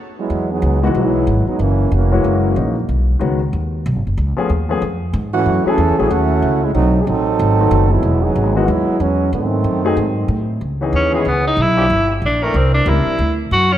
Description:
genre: jazz, big band swing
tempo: 186 BPM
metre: 4/4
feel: swing 62% on 8ths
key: C# minor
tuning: A4 = 440 Hz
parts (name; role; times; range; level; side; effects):
- bright trombone section; second line; 0.2-2.8, 5.3-10.5 s; D#3 to A4; -17 LUFS; right 3 dB; none
- upright bass; bass; 0.3-13.8 s; E1 to A2; -17 LUFS; equal; none
- clear grand piano; accompaniment; 0.8-13.2 s; D#3 to Bb4; -21 LUFS; left 4 dB; none
- clear tenor saxophone; melody; 11.0-13.8 s; G#3 to F#4; -16 LUFS; equal; none
- warm trombone section; sustained chords; 11.1-12.8 s; E3 to Bb4; -24 LUFS; equal; none
room: moderate concert hall reverb, RT60 2.0 s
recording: none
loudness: -14 LUFS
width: side -11 dB against mid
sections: 0.3-10.6 A section; 10.6-13.8 B section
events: stop 0.0-0.3; trombone section solo 0.3-10.6; tenor saxophone solo 10.6-13.8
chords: 0.3 Emaj9; 1.6 F#7; 2.9 B69; 4.2 C#7b13; 5.5 F#m9; 6.7 B7b9; 8.0 Emaj9; 9.3 G#7b9; 10.6 C#m7; 11.9 Gm; 12.5 C9; 13.2 Dadd9

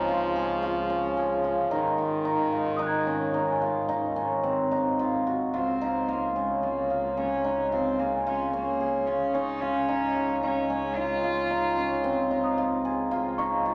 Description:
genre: contemporary instrumental, chamber music in an uneven meter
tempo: 111 BPM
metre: 7/4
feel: straight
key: Db major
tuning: A4 = 437 Hz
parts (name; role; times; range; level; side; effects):
- clear French horn; second line; 0.0-5.3, 13.1-13.7 s; Eb3 to F3; -32 LUFS; equal; none
- cimbalom; arpeggios; 0.0-13.7 s; C4 to Ab4; -28 LUFS; equal; none
- rich double bass; bass; 0.0-13.7 s; Ab1 to Db2; -42 LUFS; equal; none
- celesta; texture; 2.8-13.7 s; F5 to Ab6; -37 LUFS; equal; none
- rich cello; melody; 5.5-12.6 s; Ab3 to F4; -34 LUFS; equal; none
room: wet recital hall reverb, RT60 1.4 s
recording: none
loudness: -27 LUFS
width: mono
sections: 0.0-5.5 A section; 5.5-13.7 B section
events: none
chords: 0.0 Dbadd9; 1.7 Ab7; 5.5 Bbm7/Db

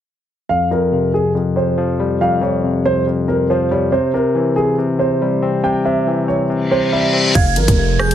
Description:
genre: hip hop, drill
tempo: 140 BPM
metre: 4/4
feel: half-time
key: F harmonic minor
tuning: A4 = 442 Hz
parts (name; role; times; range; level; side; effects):
- dark concert grand piano; melody; 0.5-8.1 s; Ab4 to G5; -18 LUFS; right 2 dB; ping-pong delay
- barky tine electric piano; accompaniment; 0.5-8.1 s; F2 to C4; -17 LUFS; left 3 dB; overdrive
- reverse cymbal and downlifter; sound effects; 6.7-8.1 s; none; -20 LUFS; left 1 dB; none
- glassy synth bell; second line; 7.4-8.1 s; G6 to Ab6; -23 LUFS; right 5 dB; chorus, phaser, ping-pong delay
- deep dark ambient pad; sustained chords; 7.9-8.1 s; C3 to G4; -28 LUFS; right 8 dB; none
- distorted 808-style bass; bass; 7.4-8.1 s; F1 to Ab1; -17 LUFS; right 1 dB; distortion
- drill drum kit; drums; 7.4-8.1 s; hi-hat, kick drum, rim click; -16 LUFS; right 1 dB; none
room: light reverb, digital ambience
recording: none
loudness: -14 LUFS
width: side -10 dB against mid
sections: 0.5-7.4 A section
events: reverse cymbal 6.7-7.4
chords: 0.5 Fsus2; 3.9 C; 7.4 Fmadd9

